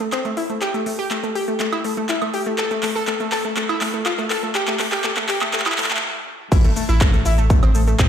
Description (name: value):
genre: progressive house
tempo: 122 BPM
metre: 4/4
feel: straight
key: A minor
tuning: A4 = 441 Hz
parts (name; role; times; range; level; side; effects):
- analog pluck; arpeggios; 0.0-8.1 s; A3 to A4; -22 LUFS; left 1 dB; chorus, sidechain pumping, ping-pong delay
- big-room dance drum kit; drums; 0.0-8.1 s; crash cymbal, handclaps, hi-hat, shaker, woodblock; -24 LUFS; right 1 dB; high-pass filter on hats, high-pass filter on perc, high-pass filter on snare, high-pass filter on cymbals, high-pass filter on room
- saturated sub bass; bass; 6.5-8.1 s; A1 to A2; -18 LUFS; equal; sidechain pumping
- electronic kick drum; drums; 6.5-8.1 s; none; -15 LUFS; equal; none
room: moderate lush hall reverb, RT60 2.1 s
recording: played on a big sound system in a bare room, large studio reverb, high-pass filter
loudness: -18 LUFS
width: side -9 dB against mid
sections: 0.0-6.5 A section; 6.5-8.1 B section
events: build-up 0.0-6.5; drum fill 0.0-6.0; filter sweep 0.0-6.5; stop 6.0-6.5; drop 6.5-8.1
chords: 0.0 N.C.; 6.5 Am